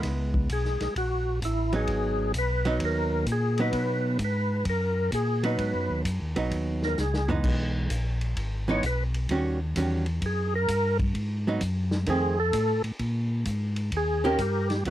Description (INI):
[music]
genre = soul jazz organ trio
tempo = 130 BPM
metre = 4/4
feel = swing 67% on 8ths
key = G# minor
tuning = A4 = 440 Hz
[part]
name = archtop guitar, miked and amplified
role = accompaniment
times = 0.0-14.9 s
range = D#3 to G4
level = -28 LUFS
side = right 3 dB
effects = none
[part]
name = mellow tonewheel organ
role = bass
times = 0.0-14.9 s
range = G#1 to B2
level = -28 LUFS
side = equal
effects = chorus vibrato, slow rotary speaker
[part]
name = vintage drum kit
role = drums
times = 0.0-14.9 s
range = crash cymbal, hi-hat, kick drum, ride cymbal, snare drum, toms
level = -34 LUFS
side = equal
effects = none
[part]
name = overdriven tonewheel organ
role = melody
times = 0.5-14.8 s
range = E4 to C#5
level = -28 LUFS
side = equal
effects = slow rotary speaker, chorus vibrato
[sound]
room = little or no reverb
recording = dry, close 1970s-style studio recording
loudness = -24 LUFS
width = side -13 dB against mid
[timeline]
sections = 0.0-14.9 A section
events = tonewheel organ solo 0.0-14.9; drum fill 7.0-7.4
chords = 0.0 C#m7; 1.9 G#m7; 7.4 Emaj7; 9.3 D#7#9; 11.1 G#m7; 12.1 F7; 13.0 G#sus2; 13.9 D#7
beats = | 0.03 0.50 0.96 1.42 | 1.89 2.35 2.81 3.27 | 3.74 4.20 4.66 5.12 | 5.59 6.05 6.51 6.98 | 7.44 7.90 8.37 8.83 | 9.29 9.76 10.22 10.69 | 11.15 11.61 12.07 12.54 | 13.00 13.47 13.93 14.39 | 14.86